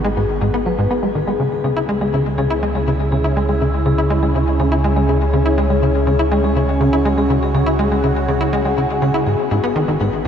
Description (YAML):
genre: ambient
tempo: 122 BPM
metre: 4/4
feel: straight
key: unclear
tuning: A4 = 440 Hz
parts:
  - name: phased analog pad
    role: sustained chords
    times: 0.0-10.3 s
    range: C#3 to G#4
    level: -21 LUFS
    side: right 2 dB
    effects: phaser, chorus, shimmer reverb
  - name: vibraphone with soft mallets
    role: arpeggios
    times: 0.0-10.3 s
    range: G#4 to B4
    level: -23 LUFS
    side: moving between left 11 dB and left 2 dB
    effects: auto-pan, low-pass filter, ping-pong delay, shimmer reverb
  - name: tight sequencer bass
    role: riff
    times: 0.0-10.3 s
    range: G#2 to E4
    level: -19 LUFS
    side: equal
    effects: lush chorus, ping-pong delay, shimmer reverb
  - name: warm sub bass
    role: bass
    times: 0.0-10.3 s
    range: G#1 to C#2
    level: -21 LUFS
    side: right 1 dB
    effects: none
room: wet huge ambient reverb, RT60 8.3 s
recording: dark, warm production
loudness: -15 LUFS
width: side -8 dB against mid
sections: 0.0-10.3 A section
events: filter sweep on vibraphone 0.0-10.3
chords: 0.0 G#m; 1.4 C#m; 9.3 G#m